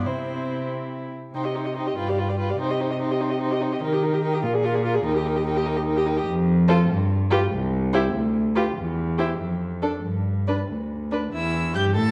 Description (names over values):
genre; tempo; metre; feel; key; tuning
quick classical-period movement for string quartet; 96 BPM (dotted quarters); 6/8; straight; C minor; A4 = 440 Hz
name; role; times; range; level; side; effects
warm violin; melody; 0.0-12.1 s; B4 to A6; -36 LUFS; equal; none
dark violin; second line; 0.0-12.1 s; E4 to Eb5; -31 LUFS; equal; none
warm viola; accompaniment; 0.0-12.1 s; C4 to A4; -30 LUFS; equal; none
rich cello; bass; 0.0-12.1 s; C2 to Eb3; -27 LUFS; equal; none
room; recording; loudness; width
wet recital hall reverb, RT60 1.6 s; worn, warbling old tape, cassette tape, warbly pitch drift; -24 LUFS; mono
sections
0.0-1.3 A section; 1.3-11.3 B section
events
none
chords
0.1 C; 1.3 Cm; 2.0 G7; 2.6 Cm; 3.8 Eb; 4.4 Bb7; 5.1 Eb; 6.3 N.C.; 6.9 G7(no3); 7.5 C; 8.1 G7(no3)/D (rootless); 8.8 N.C.; 9.4 Dm/F; 10.0 G5; 11.3 Em